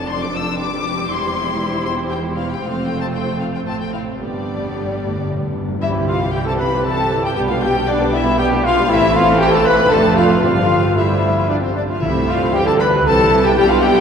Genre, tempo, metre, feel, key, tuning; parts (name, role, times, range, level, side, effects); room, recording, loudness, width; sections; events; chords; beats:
quick classical-period movement for symphony orchestra; 116 BPM; 3/4; rubato; C major; A4 = 441 Hz
rich chamber violin section; melody; 0.0-14.0 s; C5 to E6; -23 LUFS; left 4 dB
rich chamber violin section; second line; 0.0-14.0 s; G3 to D5; -26 LUFS; left 3 dB
rich chamber viola section; accompaniment; 0.0-14.0 s; D3 to E4; -22 LUFS; right 2 dB
rich chamber cello section; bass; 0.0-14.0 s; E2 to D3; -24 LUFS; right 2 dB
rich chamber double bass section; bass; 0.0-14.0 s; E1 to D2; -26 LUFS; right 2 dB
timpani; percussion; 4.2-5.8, 10.4-12.8 s; G2 to C3; -28 LUFS; left 1 dB
mellow hollow concert flute; second line; 5.8-14.0 s; C5 to B5; -24 LUFS; left 1 dB
warm clarinet; second line; 5.8-14.0 s; C4 to B4; -22 LUFS; equal
mellow French horn section; sustained chords; 5.8-14.0 s; C4 to B4; -21 LUFS; left 2 dB
clear trumpet; stabs; 5.8-14.0 s; C4 to B4; -22 LUFS; right 1 dB
wet cathedral reverb, RT60 5.6 s; recorded in a church or concert hall; -14 LUFS; side -7 dB against mid
0.0-5.8 A section; 5.8-14.0 B section
timpani fill 4.2-5.8
0.0 Dm/F; 0.6 G7/F; 1.1 C/E; 2.6 F; 4.2 G; 5.8 C; 7.4 G/B; 8.9 Am; 9.9 Dm/F; 10.4 C/G; 11.5 G5; 12.0 C
0.07 0.58 | 1.09 1.60 2.11 | 2.63 3.14 3.66 | 4.20 4.75 5.28 | 5.81 6.33 6.85 | 7.36 7.88 8.39 | 8.89 9.39 9.90 | 10.43 10.96 11.48 | 12.02 12.54 13.06 | 13.57